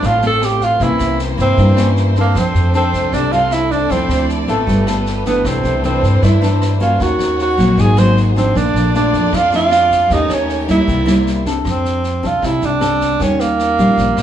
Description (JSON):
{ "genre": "bossa nova", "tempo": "155 BPM", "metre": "4/4", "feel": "straight", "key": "unclear", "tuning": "A4 = 441 Hz", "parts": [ { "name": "breathy tenor saxophone", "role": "melody", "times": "0.0-14.2 s", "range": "A3 to B#4", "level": "-16 LUFS", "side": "right 3 dB", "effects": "none" }, { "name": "silver concert flute", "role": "second line", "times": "0.0-11.4 s", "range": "A4 to B#5", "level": "-25 LUFS", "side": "equal", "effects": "none" }, { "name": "nylon-string guitar", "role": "accompaniment", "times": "0.0-14.2 s", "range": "F2 to A4", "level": "-18 LUFS", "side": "left 2 dB", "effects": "none" }, { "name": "warm symphonic violin section", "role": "sustained chords", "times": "0.0-11.6 s", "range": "A3 to D5", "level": "-25 LUFS", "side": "left 1 dB", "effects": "none" }, { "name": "upright bass", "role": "bass", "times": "0.0-14.2 s", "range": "G1 to G2", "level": "-18 LUFS", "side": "equal", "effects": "none" }, { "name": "vintage brush drum kit", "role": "drums", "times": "0.0-14.2 s", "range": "kick drum, rim click, snare drum", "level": "-26 LUFS", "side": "equal", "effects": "none" } ], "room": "moderate studio reverb, RT60 0.8 s", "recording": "band playing live in one room, small room ambience", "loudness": "-12 LUFS", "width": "side -10 dB against mid", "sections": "0.0-11.7 A section; 11.7-14.2 B section", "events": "none", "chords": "0.0 Dm7; 0.8 C7b9; 2.3 F6; 3.9 Dm9; 4.7 G9; 5.4 C69; 7.0 Ebm7; 7.8 G#9; 8.5 Bbmaj7; 10.1 Eb7#11; 10.9 C7; 11.7 F6; 13.2 Eb9" }